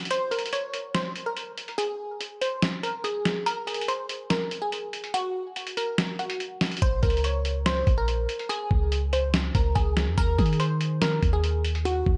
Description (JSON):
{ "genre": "hip hop, trap", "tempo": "143 BPM", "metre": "4/4", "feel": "half-time", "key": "unclear", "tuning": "A4 = 440 Hz", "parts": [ { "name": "glassy wavetable pluck", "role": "melody", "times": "0.0-12.2 s", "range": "Gb4 to Db5", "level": "-32 LUFS", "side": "equal", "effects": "chorus, phaser, delay" }, { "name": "lo-fi sampler-style drum kit", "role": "drums", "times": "0.0-12.2 s", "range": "hi-hat, kick drum, snare drum", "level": "-29 LUFS", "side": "equal", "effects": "none" }, { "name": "clean 808-style bass", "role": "bass", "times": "6.8-12.2 s", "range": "Bb1 to Eb3", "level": "-28 LUFS", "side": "equal", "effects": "none" } ], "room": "moderate plate reverb, RT60 1.4 s", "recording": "dreamy mix soaked in reverb, nothing above 10.3 kHz", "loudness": "-27 LUFS", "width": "mono", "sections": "0.0-12.2 A section", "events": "kick muted 0.1-6.8", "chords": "0.1 N.C.; 6.8 Bbm; 8.5 Db5; 10.2 Ebm" }